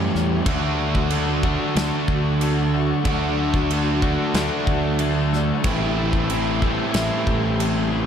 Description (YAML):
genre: rock, shoegaze and dream pop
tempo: 92 BPM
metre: 4/4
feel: straight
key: D major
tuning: A4 = 441 Hz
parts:
  - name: string machine, cellos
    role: sustained chords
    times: 0.0-8.1 s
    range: F#4 to C#6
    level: -32 LUFS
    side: left 1 dB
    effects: none
  - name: biting overdriven guitar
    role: riff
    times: 0.0-8.1 s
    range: A2 to G4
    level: -27 LUFS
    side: left 10 dB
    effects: lush chorus
  - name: biting overdriven guitar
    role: riff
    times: 0.0-8.1 s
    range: A2 to G4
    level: -25 LUFS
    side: right 8 dB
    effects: reverse reverb
  - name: crunchy overdriven guitar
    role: riff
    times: 0.0-8.1 s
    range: A2 to G4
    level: -26 LUFS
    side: left 1 dB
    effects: none
  - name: fuzz fingered electric bass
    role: bass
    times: 0.0-8.1 s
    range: A1 to F#2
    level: -26 LUFS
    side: equal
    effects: overdrive
  - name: loose indie drum kit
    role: drums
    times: 0.1-7.8 s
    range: crash cymbal, kick drum, snare drum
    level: -26 LUFS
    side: equal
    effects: none
  - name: twelve-string electric guitar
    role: arpeggios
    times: 0.5-8.1 s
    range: E3 to C4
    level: -32 LUFS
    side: left 9 dB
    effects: wide subtle chorus, digital delay
room: light reverb, small room ambience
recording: none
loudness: -19 LUFS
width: side -8 dB against mid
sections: 0.0-8.1 A section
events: none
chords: 0.5 Dmaj7; 5.7 Am7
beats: | 0.47 1.12 1.77 2.41 | 3.06 3.71 4.36 5.01 | 5.66 6.31 6.96 7.61